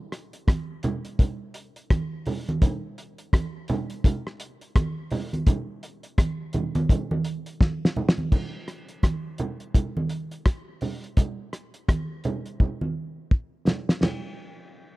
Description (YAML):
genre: reggae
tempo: 84 BPM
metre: 4/4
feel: swing 61% on 16ths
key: none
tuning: none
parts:
  - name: cloth-damped thuddy drum kit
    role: drums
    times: 0.1-14.2 s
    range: crash cymbal, hi-hat, kick drum, ride cymbal, rim click, snare drum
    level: -20 LUFS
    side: equal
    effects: none
  - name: congas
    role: percussion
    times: 0.5-14.4 s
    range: none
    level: -29 LUFS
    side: right 2 dB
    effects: none
room: studio reverb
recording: dry, close 1970s-style studio recording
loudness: -24 LUFS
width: side -19 dB against mid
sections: 0.0-8.3 A section; 8.3-14.0 B section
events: drum fill 7.6-8.3, 12.6-14.0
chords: none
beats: 0.48 1.19 1.90 | 2.62 3.33 4.04 4.75 | 5.47 6.18 6.89 7.61 | 8.32 9.03 9.74 10.46 | 11.17 11.89 12.60 13.31 | 14.03